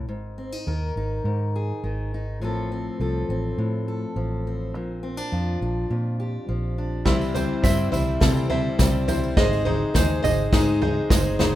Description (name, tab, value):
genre	indie folk with a building arrangement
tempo	103 BPM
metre	4/4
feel	straight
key	unclear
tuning	A4 = 440 Hz
part	fingerpicked steel-string acoustic guitar	accompaniment	0.0-7.1 s	F2 to Bb4	-30 LUFS	left 1 dB	none
part	vintage muted fingered electric bass	bass	0.0-11.6 s	G1 to C3	-26 LUFS	equal	none
part	bright upright piano	accompaniment	7.0-11.6 s	C2 to C5	-30 LUFS	right 2 dB	none
part	picked plugged-in steel-string acoustic guitar	accompaniment	7.1-11.6 s	C3 to C5	-25 LUFS	left 5 dB	none
part	ukulele	arpeggios	7.1-11.6 s	Eb4 to E5	-28 LUFS	right 6 dB	none
part	unplugged drum kit	drums	7.1-11.5 s	kick drum, snare drum, toms	-22 LUFS	right 1 dB	none
part	tambourine	percussion	7.1-11.5 s	none	-37 LUFS	right 6 dB	none
room	studio ambience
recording	rough home demo mix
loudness	-21 LUFS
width	side -13 dB against mid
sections	0.0-11.6 A section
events	build-up 0.0-11.6; drum fill 7.1-11.6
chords	0.1 Ab; 2.4 F/A; 4.7 Bbadd9; 7.1 C; 9.4 Ab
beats	| 0.09 0.67 1.25 1.83 | 2.41 3.00 3.58 4.16 | 4.74 5.32 5.90 6.48 | 7.06 7.64 8.22 8.80 | 9.38 9.96 10.54 11.11